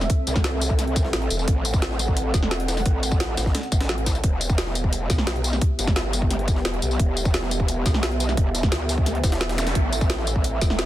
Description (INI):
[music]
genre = dark technical drum and bass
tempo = 174 BPM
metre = 4/4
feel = straight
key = E minor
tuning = A4 = 440 Hz
[part]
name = dark analog pad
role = sustained chords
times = 0.0-10.9 s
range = B3 to F#5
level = -30 LUFS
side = right 1 dB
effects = chorus, vintage 12-bit sampler grit, sidechain pumping
[part]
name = growl bass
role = bass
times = 0.0-10.9 s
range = E1 to D2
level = -26 LUFS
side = equal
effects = chorus, overdrive, sidechain pumping
[part]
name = drum and bass drum kit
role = drums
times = 0.0-10.9 s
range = hi-hat, snare drum, tambourine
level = -27 LUFS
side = equal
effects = none
[part]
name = electronic kick drum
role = drums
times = 0.1-10.7 s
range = none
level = -22 LUFS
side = equal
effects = none
[part]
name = jungle sampler-style drum kit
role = drums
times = 0.1-10.9 s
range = hi-hat, snare drum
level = -34 LUFS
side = equal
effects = none
[part]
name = zap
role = sound effects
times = 9.6-9.7 s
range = none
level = -31 LUFS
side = right 1 dB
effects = none
[sound]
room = little or no reverb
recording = dense, heavily limited modern master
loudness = -20 LUFS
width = side -14 dB against mid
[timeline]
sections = 0.0-10.9 A section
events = none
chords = 0.0 Am; 4.2 Em; 9.8 Am